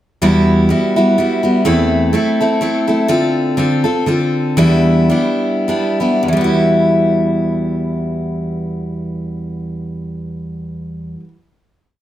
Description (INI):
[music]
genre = acoustic folk duo or small band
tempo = 94-126 BPM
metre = 3/4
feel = swing 55% on 8ths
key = E minor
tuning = A4 = 440 Hz
[part]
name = picked steel-string acoustic guitar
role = solo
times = 0.2-11.4 s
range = E2 to A4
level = -13 LUFS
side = equal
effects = slapback echo
[sound]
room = light reverb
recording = close, detailed microphones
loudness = -13 LUFS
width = side -12 dB against mid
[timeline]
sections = 0.2-6.3 interlude; 6.3-10.1 final chord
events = slowing down 3.1-6.3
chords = 0.2 Emadd9; 1.7 Am/E; 3.1 F6; 4.6 G6/E; 6.3 Emadd9